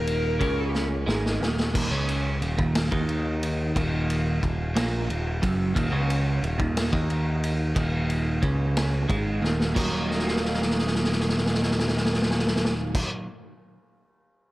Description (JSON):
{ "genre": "psychedelic rock", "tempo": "60 BPM (dotted quarters)", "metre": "6/8", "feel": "straight", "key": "Eb minor", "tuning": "A4 = 440 Hz", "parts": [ { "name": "dark smooth lead guitar", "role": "melody", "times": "0.0-0.7 s", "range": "Bb4", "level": "-30 LUFS", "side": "left 1 dB", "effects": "wah, overdrive, analog delay" }, { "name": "twelve-string electric guitar", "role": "riff", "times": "0.0-13.3 s", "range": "Eb2 to Eb4", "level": "-27 LUFS", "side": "right 1 dB", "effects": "phaser, analog delay" }, { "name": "modern bright picked electric bass", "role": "bass", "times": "0.0-13.0 s", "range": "Eb1 to Eb2", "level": "-28 LUFS", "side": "equal", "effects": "none" }, { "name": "vintage drum kit", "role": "drums", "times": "0.1-13.1 s", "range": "crash cymbal, kick drum, ride cymbal, snare drum", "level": "-27 LUFS", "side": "equal", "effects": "analog delay" } ], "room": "small room reverb", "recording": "echo-heavy mix", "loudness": "-22 LUFS", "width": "side -18 dB against mid", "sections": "0.0-1.7 A section; 1.7-9.8 B section; 9.8-13.7 C section", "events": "drum fill 0.7-1.7, 9.4-9.8, 10.1-12.9", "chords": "0.0 Eb5; 1.7 N.C.; 9.8 Ebm" }